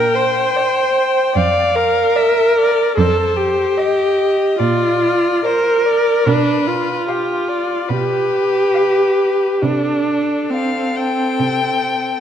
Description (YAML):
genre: classical, slow romantic movement for string quartet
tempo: 62-76 BPM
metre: 4/4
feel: rubato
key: unclear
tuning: A4 = 440 Hz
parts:
  - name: rich violin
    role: melody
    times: 0.0-12.2 s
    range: G4 to G5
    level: -22 LUFS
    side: left 8 dB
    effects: none
  - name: warm viola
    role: accompaniment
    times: 0.0-12.2 s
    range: C4 to D5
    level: -15 LUFS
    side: right 1 dB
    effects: none
  - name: rich cello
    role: bass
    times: 0.0-12.1 s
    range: F2 to C3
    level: -22 LUFS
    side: right 3 dB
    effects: none
  - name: rich violin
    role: second line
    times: 0.6-12.2 s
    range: D5 to G5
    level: -23 LUFS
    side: left 4 dB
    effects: none
room: wet concert hall reverb, RT60 2.4 s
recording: dark, warm production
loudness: -14 LUFS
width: side -9 dB against mid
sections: 0.0-12.2 A section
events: none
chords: 0.0 Bb; 3.0 F5; 4.6 Bb; 6.3 G7/B; 9.6 F/C; 11.4 C5